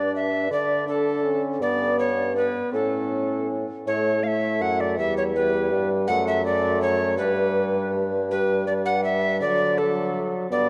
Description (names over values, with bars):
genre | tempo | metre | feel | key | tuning
classical, renaissance-style consort dance | 162 BPM | 3/4 | straight | A mixolydian | A4 = 435 Hz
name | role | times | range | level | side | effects
alto recorder | melody | 0.0-10.7 s | A4 to F#5 | -26 LUFS | equal | none
brilliant trombone | accompaniment | 0.0-10.7 s | F#3 to D4 | -30 LUFS | equal | none
mellow bassoon | bass | 0.0-10.7 s | E2 to D3 | -29 LUFS | equal | none
room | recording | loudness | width
wet church reverb, RT60 3.7 s | dark, warm production | -23 LUFS | mono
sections
0.0-3.9 A section; 3.9-10.7 A section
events
none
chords
0.0 G5; 0.5 D5; 1.6 G; 2.7 A; 5.0 Em; 6.1 D/F#; 7.2 G; 9.4 D